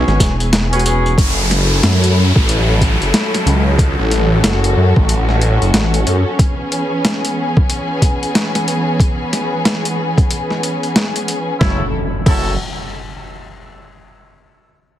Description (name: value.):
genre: glitch hop.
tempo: 92 BPM.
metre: 4/4.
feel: swing 62% on 16ths.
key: F# minor.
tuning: A4 = 440 Hz.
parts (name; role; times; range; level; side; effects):
rich studio string section; sustained chords; 0.0-11.9 s; E3 to A4; -20 LUFS; left 1 dB; sidechain pumping.
warm horn section; stabs; 0.0-1.1, 11.6-12.5 s; B3 to A4; -23 LUFS; equal; sidechain pumping, tape echo.
phased detuned saw bass; bass; 0.0-6.2, 11.6-12.6 s; F#1 to F#2; -14 LUFS; equal; phaser, tube saturation.
rubbery square bass; bass; 0.1-1.2 s; E1 to G#1; -16 LUFS; equal; none.
boom bap sampler-style drum kit; drums; 0.1-12.4 s; crash cymbal, hi-hat, snare drum, tambourine; -19 LUFS; equal; overdrive.
electronic kick drum; drums; 0.2-12.4 s; none; -14 LUFS; equal; overdrive.
downlifter and impact; sound effects; 1.2-6.4, 11.8-14.2 s; none; -22 LUFS; equal; none.
room: light reverb.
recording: heavily compressed radio sound, multiband compression.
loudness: -13 LUFS.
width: side -12 dB against mid.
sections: 0.0-1.2 A section; 1.2-11.6 B section; 11.6-14.2 C section.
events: drop 0.0-1.2; kick drops out 0.5-1.2.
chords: 0.0 E6; 1.2 F#m7; 6.4 E6; 11.6 F#m7.